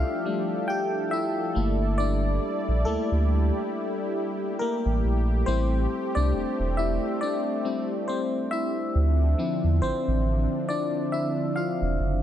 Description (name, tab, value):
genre	R&B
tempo	69 BPM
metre	4/4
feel	swing 58% on 16ths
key	G dorian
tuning	A4 = 440 Hz
part	FM electric piano	accompaniment	0.0-12.2 s	F3 to G5	-28 LUFS	left 2 dB	chorus
part	warm analog pad	sustained chords	0.0-12.2 s	D3 to D5	-30 LUFS	right 1 dB	chorus
part	warm sub bass	bass	0.0-12.2 s	E1 to E2	-24 LUFS	equal	none
room	light reverb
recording	none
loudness	-23 LUFS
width	side -11 dB against mid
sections	0.0-12.2 A section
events	FM electric piano solo 0.0-12.2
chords	0.0 F69; 1.6 Gm69; 5.5 Am7; 9.0 Dm9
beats	0.26 1.12 | 1.99 2.86 3.73 4.60 | 5.47 6.34 7.21 8.08 | 8.95 9.82 10.69 11.56